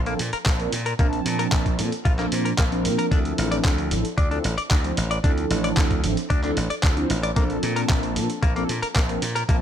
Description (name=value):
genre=nu-disco, nu disco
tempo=113 BPM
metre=4/4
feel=straight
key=unclear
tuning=A4 = 440 Hz
part: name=slap bass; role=bass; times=0.0-9.6 s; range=A1 to Bb2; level=-26 LUFS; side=equal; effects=none
part: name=mellow synth brass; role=accompaniment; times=0.1-9.6 s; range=F3 to A5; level=-26 LUFS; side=right 1 dB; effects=chorus, phaser, digital delay
part: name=direct-recorded clean electric guitar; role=riff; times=0.1-9.6 s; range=Bb2 to D5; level=-30 LUFS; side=left 3 dB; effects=wide subtle chorus, low-pass filter, digital delay
part: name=dusty soul sampler-style drum kit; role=drums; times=0.1-9.6 s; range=handclaps, hi-hat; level=-29 LUFS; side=right 1 dB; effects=none
part: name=electronic kick drum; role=drums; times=0.5-9.6 s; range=none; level=-21 LUFS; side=equal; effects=none
room=light reverb, digital ambience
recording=none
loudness=-20 LUFS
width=side -9 dB against mid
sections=0.0-9.6 A section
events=none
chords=0.0 Bbmaj7; 3.1 Dm7; 7.4 Bbmaj7